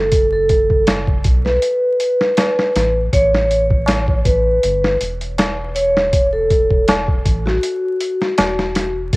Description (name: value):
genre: trip hop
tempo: 80 BPM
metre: 4/4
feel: swing 54% on 16ths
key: unclear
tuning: A4 = 441 Hz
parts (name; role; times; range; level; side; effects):
- vibraphone with medium mallets; melody; 0.0-9.0 s; F#4 to C#5; -17 LUFS; equal; cassette tape, dub echo
- round analog bass; bass; 0.0-9.2 s; E1 to B1; -21 LUFS; equal; none
- boom bap sampler-style drum kit; drums; 0.1-9.2 s; hi-hat, kick drum, snare drum; -18 LUFS; equal; cassette tape
- tabla; percussion; 0.9-8.5 s; none; -23 LUFS; equal; none
room: light reverb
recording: home recording on cassette, vinyl crackle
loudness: -14 LUFS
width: side -22 dB against mid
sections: 0.0-9.2 A section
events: none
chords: 0.0 B5; 3.1 A5